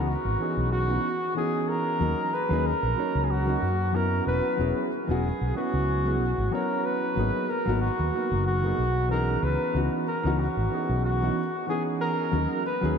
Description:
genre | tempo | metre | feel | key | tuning
sunset chillout | 93 BPM | 4/4 | swing 55% on 16ths | unclear | A4 = 440 Hz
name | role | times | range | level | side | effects
warm flugelhorn | melody | 0.0-13.0 s | F#4 to B4 | -28 LUFS | equal | diffuse ambient delay
dark concert grand piano | accompaniment | 0.0-13.0 s | E3 to C#5 | -29 LUFS | equal | auto-pan, diffuse ambient delay
fretless electric bass | bass | 0.0-13.0 s | E1 to F#2 | -26 LUFS | equal | none
room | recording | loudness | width
wet cathedral reverb, RT60 5.1 s | dreamy mix soaked in reverb | -24 LUFS | side -7 dB against mid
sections
0.0-13.0 A section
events
none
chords
0.0 C#m11; 2.0 D#m7; 4.3 E69; 7.2 G#m9; 9.4 C#m11; 12.3 D#m7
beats
0.07 0.72 1.36 | 2.01 2.65 3.30 3.95 | 4.59 5.24 5.88 6.53 | 7.17 7.82 8.46 9.11 | 9.75 10.40 11.04 11.69 | 12.33 12.98

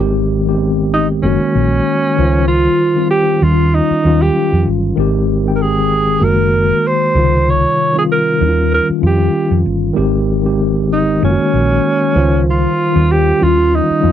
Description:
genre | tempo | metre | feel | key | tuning
soul | 96 BPM | 4/4 | swing 54% on 16ths | Ab major | A4 = 440 Hz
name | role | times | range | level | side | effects
mellow tine electric piano | accompaniment | 0.0-14.1 s | C3 to G5 | -15 LUFS | left 2 dB | medium stereo tremolo
hollow-body short-scale fingered electric bass | bass | 0.0-14.1 s | Gb1 to F2 | -16 LUFS | right 1 dB | none
warm alto saxophone | melody | 0.9-14.1 s | Db4 to Db5 | -15 LUFS | right 2 dB | none
room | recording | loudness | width
little or no reverb | dry, close 1970s-style studio recording | -11 LUFS | side -10 dB against mid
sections
0.0-14.1 A section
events
none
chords
0.0 Abmaj7; 1.2 Gb69; 2.2 Dbmaj9#11; 3.4 Eb9; 5.0 Abmaj7; 6.2 Gb69; 7.2 Dbmaj9#11; 8.4 Eb9; 10.0 Abmaj7; 11.2 Gb69; 12.2 Dbmaj9#11; 13.4 Eb9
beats
0.60 1.23 1.85 | 2.48 3.10 3.73 4.35 | 4.97 5.60 6.22 6.85 | 7.47 8.10 8.72 9.35 | 9.97 10.60 11.22 11.84 | 12.47 13.09 13.72

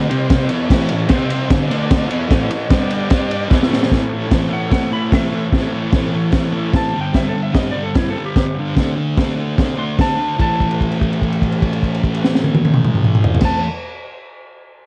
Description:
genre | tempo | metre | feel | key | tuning
garage rock duo or trio | 148 BPM | 4/4 | straight | A mixolydian | A4 = 444 Hz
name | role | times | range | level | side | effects
thick fuzz guitar | riff | 0.0-13.6 s | G2 to G4 | -22 LUFS | equal | distortion
combo organ | sustained chords | 0.1-6.9 s | C4 to D5 | -30 LUFS | equal | none
crunchy breakbeat drum kit | drums | 0.1-13.5 s | crash cymbal, hi-hat, kick drum, ride cymbal, snare drum, toms | -19 LUFS | equal | none
clean lap steel guitar | melody | 4.5-13.6 s | E4 to C6 | -26 LUFS | equal | analog delay
room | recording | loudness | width
moderate small room reverb, RT60 0.5 s | cassette tape | -17 LUFS | mono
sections
0.0-3.9 A section; 3.9-10.4 B section; 10.4-13.7 C section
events
drum fill 3.5-3.9; electric slide guitar solo 3.9-10.4; held note 10.4-13.4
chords
0.1 C5; 0.5 A; 1.1 C5; 1.5 G5; 1.7 D5; 2.1 A; 2.7 G5; 3.5 A; 6.9 G5; 8.8 D5; 10.4 A5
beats
0.31 | 0.70 1.10 1.50 1.90 | 2.30 2.70 3.10 3.50 | 3.90 4.30 4.70 5.11 | 5.51 5.91 6.32 6.72 | 7.13 7.53 7.94 8.35 | 8.75 9.16 9.57 9.98 | 10.38 10.79 11.20 11.62 | 12.03 12.44 12.85 13.26

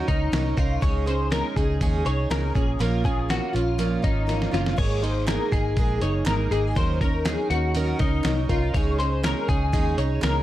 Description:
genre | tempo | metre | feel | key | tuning
jangly indie pop | 121 BPM | 4/4 | straight | Db major | A4 = 440 Hz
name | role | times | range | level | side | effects
picked plugged-in twelve-string acoustic guitar | accompaniment | 0.0-10.4 s | Bb2 to Bb4 | -28 LUFS | right 4 dB | none
twelve-string electric guitar | arpeggios | 0.0-10.4 s | Eb4 to Db5 | -28 LUFS | left 4 dB | ensemble chorus
vintage muted fingered electric bass | bass | 0.1-10.4 s | Gb1 to Eb2 | -25 LUFS | equal | none
dusty soul sampler-style drum kit | drums | 0.1-10.3 s | crash cymbal, hi-hat, kick drum, snare drum | -26 LUFS | equal | overdrive
group handclap | percussion | 5.3-10.3 s | none | -41 LUFS | right 5 dB | none
room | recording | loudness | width
little or no reverb | dark, warm production | -21 LUFS | side -14 dB against mid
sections
0.0-10.4 A section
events
drum fill 4.3-4.8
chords
0.0 Ebm7; 0.8 Dbsus2; 2.6 Bbm; 4.8 Absus2; 6.8 Ebm7; 8.7 Dbsus2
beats
0.33 | 0.82 1.32 1.81 2.31 | 2.80 3.30 3.79 4.29 | 4.79 5.28 5.78 6.27 | 6.77 7.26 7.76 8.25 | 8.75 9.24 9.73 10.23

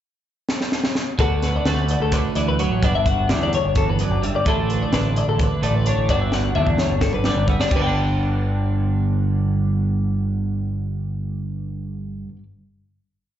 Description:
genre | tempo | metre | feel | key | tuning
math rock and midwest emo | 258 BPM (eighths) | 7/8 | straight | G major | A4 = 440 Hz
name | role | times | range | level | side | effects
crisp fusion drum kit | drums | 0.5-7.8 s | crash cymbal, hi-hat, kick drum, snare drum, toms | -23 LUFS | equal | none
twelve-string electric guitar | accompaniment | 1.2-12.4 s | E2 to F#4 | -24 LUFS | right 4 dB | analog chorus
twelve-string electric guitar | arpeggios | 1.2-12.4 s | A4 to G5 | -24 LUFS | left 6 dB | plate reverb, slapback echo
growling picked electric bass | bass | 1.2-12.2 s | G1 to E2 | -22 LUFS | equal | overdrive
room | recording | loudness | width
little or no reverb | live gig heard through the venue's PA, club reverb, nothing above 7.8 kHz | -18 LUFS | side -11 dB against mid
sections
0.0-1.2 pickup bar; 1.2-7.7 A section; 7.7-11.0 final chord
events
drum fill 0.5-1.2, 6.3-7.7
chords
0.0 N.C.; 1.2 D6; 2.8 Gmaj7; 4.5 Dsus2/A; 6.1 Gmaj7; 7.7 G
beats
0.03 0.26 0.49 0.73 0.96 | 1.20 1.43 1.66 1.90 2.13 2.36 2.60 | 2.83 3.06 3.30 3.53 3.76 4.00 4.23 | 4.46 4.69 4.93 5.16 5.39 5.62 5.86 | 6.09 6.32 6.55 6.79 7.02 7.25 7.48 | 7.71 7.95 8.18 8.41 8.64 8.88 9.11 | 9.34 9.57 9.81 10.04 10.27 10.51 10.74

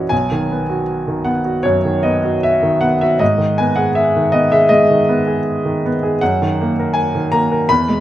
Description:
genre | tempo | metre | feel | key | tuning
classical, romantic character piece for solo piano | 79 BPM | 4/4 | rubato | unclear | A4 = 440 Hz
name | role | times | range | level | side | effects
clear baby grand piano | solo | 0.0-8.0 s | A#1 to B5 | -13 LUFS | equal | none
room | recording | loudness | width
moderate recital hall reverb, RT60 1.5 s | close, detailed microphones | -13 LUFS | side -13 dB against mid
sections
0.0-8.0 A section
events
none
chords
0.1 B; 3.2 G#m; 6.2 D#m/F#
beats
| 0.12 0.89 1.66 2.44 | 3.21 3.96 4.72 5.46 | 6.21 6.96 7.69

